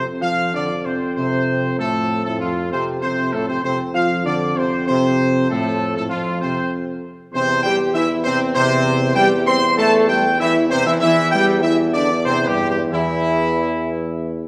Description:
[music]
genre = classical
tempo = 97 BPM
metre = 3/4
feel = straight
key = F major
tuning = A4 = 440 Hz
[part]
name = clear trumpet section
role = melody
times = 0.0-14.5 s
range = E4 to C6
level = -22 LUFS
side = equal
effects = none
[part]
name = clear trombone section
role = sustained chords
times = 0.0-14.5 s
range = E2 to C4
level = -26 LUFS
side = equal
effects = none
[part]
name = mellow French horn section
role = sustained chords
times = 0.0-14.5 s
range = E3 to C5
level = -26 LUFS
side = equal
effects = none
[part]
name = clear tuba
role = bass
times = 0.0-14.5 s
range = E2 to F2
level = -25 LUFS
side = equal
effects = none
[sound]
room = wet scoring stage reverb, RT60 1.7 s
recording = none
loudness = -18 LUFS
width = mono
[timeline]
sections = 0.0-14.5 A section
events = none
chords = 0.0 F5; 7.3 C/E

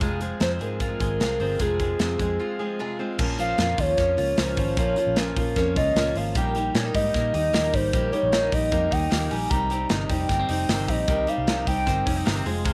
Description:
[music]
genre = jangly indie pop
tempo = 152 BPM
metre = 4/4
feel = straight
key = Bb dorian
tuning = A4 = 440 Hz
[part]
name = picked steel-string acoustic guitar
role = accompaniment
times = 0.0-12.7 s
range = F2 to Ab4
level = -33 LUFS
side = equal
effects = none
[part]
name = twelve-string electric guitar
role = arpeggios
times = 0.0-12.7 s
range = F3 to F4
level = -34 LUFS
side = equal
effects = slapback echo
[part]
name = vintage muted fingered electric bass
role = bass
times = 0.0-12.7 s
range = F1 to Bb2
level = -31 LUFS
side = equal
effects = none
[part]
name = modern studio drum kit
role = drums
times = 0.0-12.7 s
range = crash cymbal, hi-hat, kick drum, snare drum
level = -29 LUFS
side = equal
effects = none
[part]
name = hollow clarinet-like synth lead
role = melody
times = 0.4-12.2 s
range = Ab4 to Bb5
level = -28 LUFS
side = equal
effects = chorus, slapback echo
[sound]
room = light reverb, small room ambience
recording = none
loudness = -24 LUFS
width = mono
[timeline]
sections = 0.0-3.2 A section; 3.2-12.7 B section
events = break 2.4-3.2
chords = 0.0 Fm; 3.2 Bbm; 6.4 Eb; 9.5 Cm

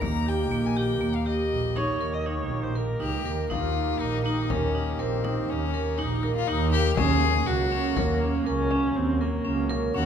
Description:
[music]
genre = contemporary instrumental, chamber music in an uneven meter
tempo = 121 BPM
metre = 7/4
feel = straight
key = Eb mixolydian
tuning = A4 = 440 Hz
[part]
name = rich violin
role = melody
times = 0.0-10.1 s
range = C4 to Bb5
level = -30 LUFS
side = left 8 dB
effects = none
[part]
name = hand-pumped harmonium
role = sustained chords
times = 0.0-10.1 s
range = Eb3 to G4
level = -34 LUFS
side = left 4 dB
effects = none
[part]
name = vibraphone with hard mallets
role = arpeggios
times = 0.0-10.1 s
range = Bb3 to Bb4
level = -28 LUFS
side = right 4 dB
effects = none
[part]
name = warm double bass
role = bass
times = 0.0-10.1 s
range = Bb1 to Eb2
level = -28 LUFS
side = right 1 dB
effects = none
[part]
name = frame drum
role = percussion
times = 0.0-9.9 s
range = none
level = -34 LUFS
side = left 4 dB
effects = none
[part]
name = dark viola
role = second line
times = 1.8-9.8 s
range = A3 to Eb5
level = -30 LUFS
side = left 1 dB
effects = none
[sound]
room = moderate concert hall reverb, RT60 2.3 s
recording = minimal, uncompressed stereo recording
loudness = -23 LUFS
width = side -8 dB against mid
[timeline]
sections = 0.0-3.5 A section; 3.5-10.1 B section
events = none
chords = 0.0 Eb; 7.0 Gb

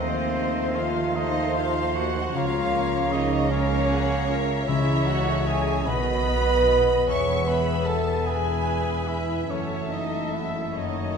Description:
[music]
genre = classical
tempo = 50 BPM (dotted quarters)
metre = 6/8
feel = uneven beats, rubato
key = Bb minor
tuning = A4 = 440 Hz
[part]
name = rich symphonic violin section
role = melody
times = 0.0-11.2 s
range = C5 to C#6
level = -33 LUFS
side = left 1 dB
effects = none
[part]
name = bright clarinet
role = second line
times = 0.0-11.2 s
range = D#5 to F5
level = -36 LUFS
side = right 1 dB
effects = none
[part]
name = mellow cor anglais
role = second line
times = 0.0-11.2 s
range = C4 to C#5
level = -34 LUFS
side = right 3 dB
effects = none
[part]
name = silver concert flute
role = second line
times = 0.0-11.2 s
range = C5 to C#6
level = -34 LUFS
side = left 2 dB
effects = none
[part]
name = warm studio violin section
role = second line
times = 0.0-11.2 s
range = C5 to C6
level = -35 LUFS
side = left 4 dB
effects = none
[part]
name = warm bassoon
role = accompaniment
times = 0.0-11.2 s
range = G#3 to B3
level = -34 LUFS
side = right 1 dB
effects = none
[part]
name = warm symphonic viola section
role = accompaniment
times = 0.0-11.2 s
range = F#4 to Db5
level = -34 LUFS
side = right 2 dB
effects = none
[part]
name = clear trombone section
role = sustained chords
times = 0.0-11.2 s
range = D#3 to B3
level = -34 LUFS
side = right 2 dB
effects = none
[part]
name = warm French horn section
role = sustained chords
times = 0.0-11.2 s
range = C4 to C#5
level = -28 LUFS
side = equal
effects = none
[part]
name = concert harp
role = arpeggios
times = 0.0-11.2 s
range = E2 to G#5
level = -34 LUFS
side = left 6 dB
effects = none
[part]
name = rich symphonic cello section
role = bass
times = 0.0-11.2 s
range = E2 to Eb3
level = -30 LUFS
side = right 2 dB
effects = none
[part]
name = rich symphonic double bass section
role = bass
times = 0.0-11.2 s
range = E1 to Eb2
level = -31 LUFS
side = right 1 dB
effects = none
[part]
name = timpani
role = percussion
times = 4.7-5.8 s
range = C#3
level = -30 LUFS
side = left 1 dB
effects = none
[sound]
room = wet scoring stage reverb, RT60 1.6 s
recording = minimal, uncompressed stereo recording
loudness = -21 LUFS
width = side -6 dB against mid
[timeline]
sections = 0.0-11.2 A section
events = none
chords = 0.0 F7/Eb; 2.4 Bbm/Db; 4.7 C#m; 5.9 B; 7.1 E; 9.5 F#m7

